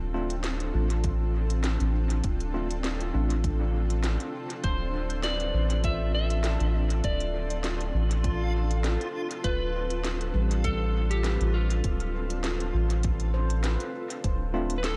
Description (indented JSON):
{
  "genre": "ambient dub",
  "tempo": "100 BPM",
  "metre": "4/4",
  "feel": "swing 55% on 16ths",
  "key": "D dorian",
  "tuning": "A4 = 442 Hz",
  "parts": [
    { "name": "granular cloud pad", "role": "sustained chords", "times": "0.0-15.0 s", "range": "C4 to A4", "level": "-38 LUFS", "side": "equal", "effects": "built-in reverb, vintage 12-bit sampler grit" },
    { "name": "soft dub sub bass", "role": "bass", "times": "0.0-15.0 s", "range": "D1 to A1", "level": "-29 LUFS", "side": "equal", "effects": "none" },
    { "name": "tine electric piano", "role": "stabs", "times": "0.1-3.3, 14.5-14.7 s", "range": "A3 to F4", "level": "-37 LUFS", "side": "equal", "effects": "fast tremolo, dub echo" },
    { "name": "organic electronic drum kit", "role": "drums", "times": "0.3-15.0 s", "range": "hi-hat, snare drum", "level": "-40 LUFS", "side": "equal", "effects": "dub echo" },
    { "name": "electronic kick drum", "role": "drums", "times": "1.0-14.4 s", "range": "none", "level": "-33 LUFS", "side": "equal", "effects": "none" },
    { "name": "electric slide guitar", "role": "melody", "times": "4.6-15.0 s", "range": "F4 to E5", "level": "-36 LUFS", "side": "equal", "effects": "dub echo" },
    { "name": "handpan", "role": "arpeggios", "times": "4.6-15.0 s", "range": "G3 to C5", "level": "-43 LUFS", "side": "equal", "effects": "dub echo" },
    { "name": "backwards swelling texture", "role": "texture", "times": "5.9-14.2 s", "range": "F4", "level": "-43 LUFS", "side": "equal", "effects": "built-in reverb" }
  ],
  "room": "light reverb",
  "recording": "none",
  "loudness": "-28 LUFS",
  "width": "mono",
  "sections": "0.0-14.2 A section",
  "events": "none",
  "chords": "0.0 Dm7"
}